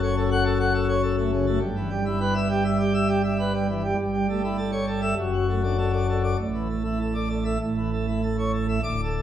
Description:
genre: classical, organ toccata.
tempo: 101 BPM.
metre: 4/4.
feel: straight.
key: unclear.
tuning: A4 = 442 Hz.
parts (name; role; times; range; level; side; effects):
pipe organ, plenum; solo; 0.0-9.2 s; D1 to D6; -22 LUFS; equal; none.
room: wet stone room reverb, RT60 1.2 s.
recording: heard from further back in the room.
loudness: -22 LUFS.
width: side -10 dB against mid.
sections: 0.0-8.8 A section.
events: none.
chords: 0.0 F#m; 1.6 Em/G; 4.0 A7/G; 5.2 D/F#; 6.4 Asus4; 7.6 A.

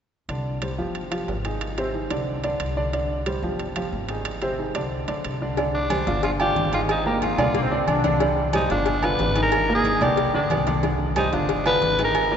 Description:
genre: latin, salsa.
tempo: 182 BPM.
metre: 4/4.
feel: straight.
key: C minor.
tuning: A4 = 440 Hz.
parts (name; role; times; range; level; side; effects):
warm concert grand piano; accompaniment; 0.3-12.4 s; Bb2 to D5; -25 LUFS; right 1 dB; none.
upright bass; bass; 0.3-12.4 s; G1 to C2; -29 LUFS; equal; none.
timbales and agogo bells; percussion; 0.3-12.3 s; none; -30 LUFS; right 3 dB; none.
congas; percussion; 5.6-12.4 s; none; -30 LUFS; left 2 dB; none.
cowbell; percussion; 5.6-12.3 s; none; -31 LUFS; left 5 dB; none.
growling tenor saxophone; melody; 5.7-12.4 s; D4 to B4; -24 LUFS; left 1 dB; none.
bright trombone section; second line; 7.5-8.5 s; G3 to D4; -31 LUFS; left 1 dB; none.
room: wet cathedral reverb, RT60 5.3 s.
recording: recorded in a church or concert hall, nothing above 7.7 kHz.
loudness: -21 LUFS.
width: side -8 dB against mid.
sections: 0.3-5.6 A section; 5.6-12.4 B section.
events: none.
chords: 0.3 Csus2; 1.0 Fm9/G; 1.6 Ab; 2.3 Csus2; 3.6 Fm9/G; 4.3 Ab; 4.9 Csus2; 6.2 G5; 6.9 Abadd9; 7.6 Csus2; 8.9 G7; 9.5 Abadd9; 10.2 Csus2; 11.5 G7.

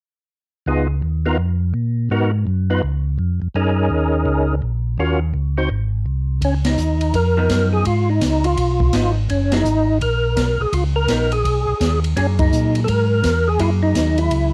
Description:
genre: soul jazz organ trio.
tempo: 167 BPM.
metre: 4/4.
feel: swing 64% on 8ths.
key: Db mixolydian.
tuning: A4 = 443 Hz.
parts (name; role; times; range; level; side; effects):
percussive tonewheel organ; melody; 0.7-14.5 s; Cb4 to C5; -22 LUFS; equal; slow rotary speaker, overdrive, chorus vibrato, cassette tape.
mellow tonewheel organ; bass; 0.7-14.5 s; Gb1 to Bb2; -21 LUFS; equal; slow rotary speaker.
open jazz drum kit; drums; 6.4-14.4 s; hi-hat, kick drum, ride cymbal, snare drum; -27 LUFS; equal; cassette tape.
vintage hollow-body jazz guitar; accompaniment; 7.4-14.5 s; F3 to Ab4; -30 LUFS; equal; cassette tape.
room: light reverb.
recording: home recording on cassette.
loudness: -19 LUFS.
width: mono.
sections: 0.7-6.4 A section; 6.4-14.5 B section.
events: band accent 6.6, 9.5, 12.3.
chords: 0.7 Db7; 2.1 Abm7; 2.8 Db; 3.5 Gb69; 5.0 Ebm7; 5.7 Ab; 6.4 Db9; 9.3 Gbadd9; 10.7 Db9; 12.2 Gb9.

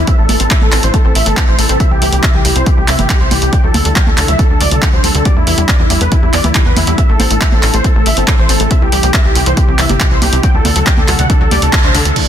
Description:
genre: uplifting trance.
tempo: 139 BPM.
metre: 4/4.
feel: straight.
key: unclear.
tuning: A4 = 439 Hz.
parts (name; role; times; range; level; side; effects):
dense compressed supersaw; melody; 0.0-12.1 s; E4 to G5; -17 LUFS; right 1 dB; sidechain pumping, low-pass filter, digital delay.
shimmering ambient pad; sustained chords; 0.0-12.3 s; C3 to E4; -22 LUFS; right 1 dB; chorus, built-in reverb, sidechain pumping.
analog pluck; arpeggios; 0.0-12.2 s; C2 to C4; -21 LUFS; left 4 dB; lush chorus, sidechain pumping, digital delay.
tight sequencer bass; bass; 0.0-12.1 s; G1 to E2; -15 LUFS; equal; sidechain pumping.
electronic kick drum; drums; 0.1-11.8 s; none; -13 LUFS; equal; none.
punchy analog drum machine; drums; 0.1-12.2 s; congas, crash cymbal, handclaps, hi-hat; -16 LUFS; right 1 dB; sidechain pumping on hats, sidechain pumping on perc, sidechain pumping on cymbals.
impact; sound effects; 12.2-12.3 s; none; -15 LUFS; equal; none.
room: light reverb, digital ambience.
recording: dense, heavily limited modern master.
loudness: -9 LUFS.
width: side -10 dB against mid.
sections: 0.0-12.2 A section.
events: filter sweep on synth pluck 0.0-12.2; band accent 11.7.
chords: 0.1 Am; 1.8 Cmaj7; 3.5 D7sus4; 5.3 Em7; 7.0 Am; 8.7 Cmaj7; 10.4 D7sus4.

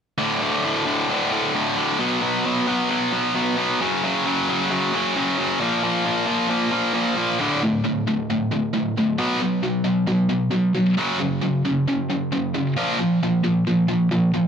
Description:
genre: rock.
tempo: 134 BPM.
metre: 4/4.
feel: straight.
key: D major.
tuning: A4 = 438 Hz.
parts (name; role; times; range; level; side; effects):
tight distorted guitar; solo; 0.2-14.5 s; D2 to B3; -19 LUFS; equal; distortion, digital delay.
room: wet studio reverb, RT60 0.5 s.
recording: none.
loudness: -19 LUFS.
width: side -7 dB against mid.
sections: 0.2-7.4 A section; 7.4-14.5 B section.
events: none.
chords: 0.2 D5; 2.0 B5; 3.8 F#5; 5.6 Bb5; 7.4 D5; 9.2 B5; 11.0 F#5; 12.8 Bb5.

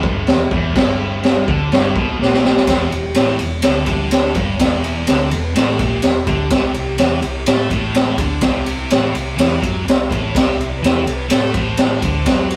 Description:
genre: garage rock duo or trio.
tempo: 125 BPM.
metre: 4/4.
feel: straight.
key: E minor.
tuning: A4 = 439 Hz.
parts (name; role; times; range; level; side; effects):
thick fuzz guitar; riff; 0.0-12.6 s; E2 to A3; -25 LUFS; equal; distortion.
hollow-body short-scale picked electric bass; bass; 0.0-12.6 s; E1 to A2; -26 LUFS; equal; none.
raw garage drum kit; drums; 0.0-12.6 s; crash cymbal, kick drum, ride cymbal, snare drum; -18 LUFS; equal; none.
overdriven combo organ; melody; 2.9-7.2, 10.3-12.6 s; E3 to E5; -31 LUFS; equal; none.
room: light reverb.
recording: rough rehearsal-room recording, warm saturation.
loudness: -16 LUFS.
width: mono.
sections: 0.0-2.7 A section; 2.7-12.6 B section.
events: drum fill 2.2-2.7.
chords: 0.0 Em; 6.5 C5.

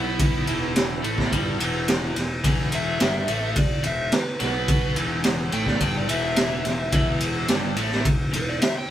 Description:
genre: blues rock power trio and southern rock.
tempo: 107 BPM.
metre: 4/4.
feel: straight.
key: E minor.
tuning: A4 = 440 Hz.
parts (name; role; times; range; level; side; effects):
overdriven slide guitar; melody; 0.0-8.9 s; E4 to G5; -29 LUFS; equal; none.
overdriven electric guitar; riff; 0.0-8.6 s; E2 to B3; -28 LUFS; equal; none.
fuzz picked electric bass; bass; 0.0-8.6 s; E1 to B1; -30 LUFS; equal; overdrive.
raw garage drum kit; drums; 0.2-8.7 s; kick drum, ride cymbal, snare drum; -23 LUFS; equal; none.
room: light reverb.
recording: band playing live in one room.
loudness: -20 LUFS.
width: side -11 dB against mid.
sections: 0.0-8.9 A section.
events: electric slide guitar solo 0.0-8.9.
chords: 0.0 Em.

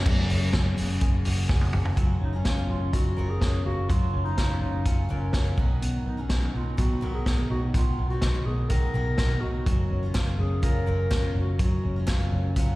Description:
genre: jangly indie pop.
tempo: 125 BPM.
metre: 4/4.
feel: straight.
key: F# major.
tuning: A4 = 440 Hz.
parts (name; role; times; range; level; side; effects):
picked steel-string acoustic guitar; accompaniment; 0.0-12.8 s; B2 to A#4; -37 LUFS; right 4 dB; slapback echo.
electric guitar through a small old amp; arpeggios; 0.0-12.8 s; B2 to A#4; -32 LUFS; left 2 dB; digital delay.
vintage muted picked electric bass; bass; 0.1-12.8 s; F#1 to B1; -27 LUFS; equal; none.
vintage drum kit; drums; 0.1-12.7 s; crash cymbal, hi-hat, kick drum, snare drum, toms; -26 LUFS; equal; none.
mellow clarinet; melody; 2.2-12.0 s; C#4 to A#4; -34 LUFS; equal; digital delay.
group handclap; percussion; 10.1-12.2 s; none; -44 LUFS; left 2 dB; none.
room: little or no reverb.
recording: live gig heard through the venue's PA, recital hall reverb.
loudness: -23 LUFS.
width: side -19 dB against mid.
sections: 0.1-2.0 A section; 2.0-12.8 B section.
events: drum fill 1.5-2.0.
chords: 0.1 F#add9; 2.0 F#maj7; 5.6 Bmaj7; 9.7 F#maj7.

